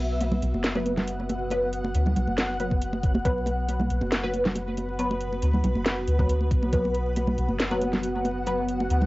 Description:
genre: deep dubstep.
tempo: 138 BPM.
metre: 4/4.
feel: swing 53% on 16ths, half-time.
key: B minor.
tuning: A4 = 439 Hz.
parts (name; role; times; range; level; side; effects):
granular cloud pad; sustained chords; 0.0-9.1 s; B3 to F#5; -30 LUFS; equal; built-in reverb, vintage 12-bit sampler grit.
soft dub sub bass; bass; 0.0-9.1 s; F#1 to D2; -28 LUFS; equal; none.
garage drum kit; drums; 0.2-9.0 s; hi-hat, snare drum; -29 LUFS; equal; cassette tape.
congas; percussion; 0.2-9.1 s; none; -30 LUFS; right 1 dB; dub echo.
filtered dub chord stab; stabs; 0.8-8.6 s; F#3 to B4; -31 LUFS; left 1 dB; phaser, ensemble chorus, cassette tape, dub echo.
electronic kick drum; drums; 2.7-3.3, 6.2-6.8 s; none; -25 LUFS; equal; cassette tape.
room: light reverb.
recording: home recording on cassette, vinyl crackle, nothing above 7.6 kHz.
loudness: -23 LUFS.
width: side -19 dB against mid.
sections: 0.0-9.1 A section.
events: none.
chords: 0.0 B5.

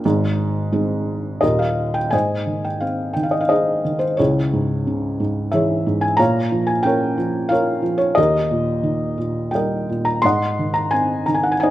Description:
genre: classical, lyrical solo piano.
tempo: 88 BPM.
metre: 3/4.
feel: rubato.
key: Ab major.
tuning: A4 = 439 Hz.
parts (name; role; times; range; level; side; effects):
felt-muted upright piano; solo; 0.0-11.7 s; Eb1 to C6; -17 LUFS; equal; none.
room: moderate recital hall reverb, RT60 1.5 s.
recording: none.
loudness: -17 LUFS.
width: side -14 dB against mid.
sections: 0.0-2.1 A section; 2.1-11.7 B section.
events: felt piano fill 1.1-2.1.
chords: 0.0 Ab; 1.4 Eb; 2.1 Ab; 4.2 Dbm; 6.2 Bbm; 8.2 Eb; 10.2 Ab7.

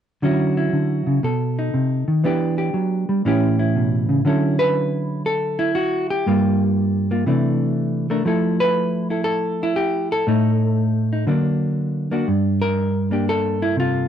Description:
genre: solo jazz.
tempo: 120 BPM.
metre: 4/4.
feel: swing 68% on 8ths.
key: D major.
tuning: A4 = 442 Hz.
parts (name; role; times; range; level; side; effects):
hollow-body jazz guitar; solo; 0.2-14.1 s; G2 to B4; -18 LUFS; equal; none.
room: moderate studio ambience, RT60 0.5 s.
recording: dark, warm production, nothing above 10.6 kHz.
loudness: -18 LUFS.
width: side -9 dB against mid.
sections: 0.2-4.2 A section; 4.2-14.1 B section.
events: none.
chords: 0.2 Dmaj9; 1.2 B7b9; 2.2 Em7; 3.2 A7; 4.2 Dmaj9; 6.2 Gm7; 7.2 C13; 8.2 Fmaj7; 10.2 N.C.; 11.3 D; 12.3 Gm9.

